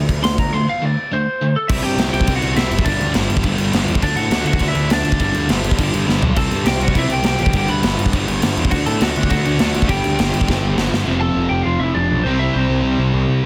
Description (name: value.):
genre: punk rock.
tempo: 205 BPM.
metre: 4/4.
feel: straight.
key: unclear.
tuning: A4 = 439 Hz.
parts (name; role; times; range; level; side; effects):
lightly driven lead guitar; melody; 0.0-13.0 s; C4 to C6; -24 LUFS; equal; none.
distorted electric guitar; riff; 0.0-13.4 s; F2 to D4; -23 LUFS; equal; distortion.
fuzz picked electric bass; bass; 0.0-13.5 s; F1 to A2; -23 LUFS; equal; overdrive.
big rock drum kit; drums; 0.1-11.0 s; crash cymbal, kick drum, snare drum, splash cymbal, toms; -22 LUFS; equal; none.
room: little or no reverb.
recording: dense, heavily limited modern master.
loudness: -18 LUFS.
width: mono.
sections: 0.0-1.7 A section; 1.7-11.1 B section; 11.1-13.5 C section.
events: lead electric guitar solo 0.0-1.7; drum fill 6.1, 10.5-11.1.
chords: 0.0 D5; 1.5 N.C.; 1.7 C; 2.9 G5; 4.0 D; 5.2 G5; 6.4 C; 7.5 G; 8.7 D; 9.9 G5; 11.1 F; 12.3 C.